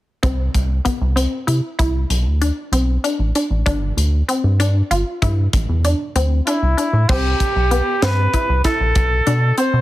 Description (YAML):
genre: progressive instrumental, band music in an uneven meter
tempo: 193 BPM (eighths)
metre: 11/8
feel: straight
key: unclear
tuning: A4 = 441 Hz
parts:
  - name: resonant blip pluck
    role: arpeggios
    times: 0.2-9.8 s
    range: B3 to F4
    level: -22 LUFS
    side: left 1 dB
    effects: chorus, plate reverb
  - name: rubbery square bass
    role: bass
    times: 0.2-9.8 s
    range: G1 to C3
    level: -17 LUFS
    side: equal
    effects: none
  - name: crisp fusion drum kit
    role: drums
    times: 0.2-9.7 s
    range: crash cymbal, hi-hat, kick drum, snare drum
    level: -23 LUFS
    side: equal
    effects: none
  - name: warm trumpet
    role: melody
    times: 6.5-9.8 s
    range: E4 to C5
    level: -19 LUFS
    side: right 1 dB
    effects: plate reverb, digital delay
room: light reverb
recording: heavily compressed radio sound, multiband compression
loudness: -15 LUFS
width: side -15 dB against mid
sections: 0.2-7.1 A section; 7.1-9.8 B section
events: none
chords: 0.2 Cmaj7; 2.1 Amadd11; 3.7 G5; 5.5 Am; 7.1 Cmaj7; 9.0 Amadd9/B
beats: | 0.23 0.55 0.86 1.17 1.48 1.79 2.11 2.42 2.73 3.04 3.35 | 3.66 3.98 4.29 4.60 4.91 5.22 5.53 5.84 6.16 6.47 6.78 | 7.09 7.40 7.71 8.02 8.33 8.64 8.96 9.27 9.58